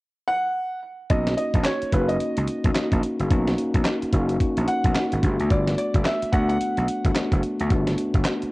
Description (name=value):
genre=R&B, new jack swing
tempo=109 BPM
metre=4/4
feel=swing 60% on 16ths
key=B major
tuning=A4 = 438 Hz
part: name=warm baby grand piano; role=melody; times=0.3-7.4 s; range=B4 to F#5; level=-26 LUFS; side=right 1 dB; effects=cassette tape
part: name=mellow tine electric piano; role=accompaniment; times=1.1-8.5 s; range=A3 to F#4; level=-26 LUFS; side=left 1 dB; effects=auto-pan, cassette tape
part: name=gritty slap bass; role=bass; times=1.1-8.5 s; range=F#1 to D2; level=-25 LUFS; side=equal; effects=overdrive
part: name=dusty soul sampler-style drum kit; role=drums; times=1.1-8.5 s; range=handclaps, hi-hat, kick drum, snare drum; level=-23 LUFS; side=equal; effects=cassette tape
room=light reverb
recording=home recording on cassette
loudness=-20 LUFS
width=side -21 dB against mid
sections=0.0-1.1 A section; 1.1-8.5 B section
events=none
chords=0.0 N.C.; 1.1 Bmaj7; 5.2 Gmaj7